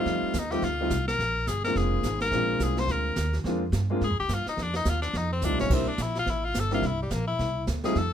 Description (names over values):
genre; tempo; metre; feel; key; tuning
jazz, small-group swing and bop; 213 BPM; 4/4; swing 59% on 8ths; unclear; A4 = 438 Hz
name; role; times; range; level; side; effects
edgy tenor saxophone; melody; 0.0-8.1 s; G3 to C5; -29 LUFS; left 3 dB; none
clear concert grand piano; accompaniment; 0.0-8.0 s; G3 to F4; -29 LUFS; equal; none
upright bass; bass; 0.1-8.1 s; F1 to Ab2; -29 LUFS; right 1 dB; none
jazz brush drum kit; drums; 0.1-8.1 s; brushed snare drum, crash cymbal, hi-hat, kick drum, snare drum; -33 LUFS; right 1 dB; none
room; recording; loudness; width
light reverb; close, detailed microphones; -24 LUFS; side -9 dB against mid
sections
0.0-8.1 A section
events
tenor saxophone solo 0.0-8.1; drum fill 5.4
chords
0.0 F7; 1.2 Bb7; 4.6 F7; 5.7 C7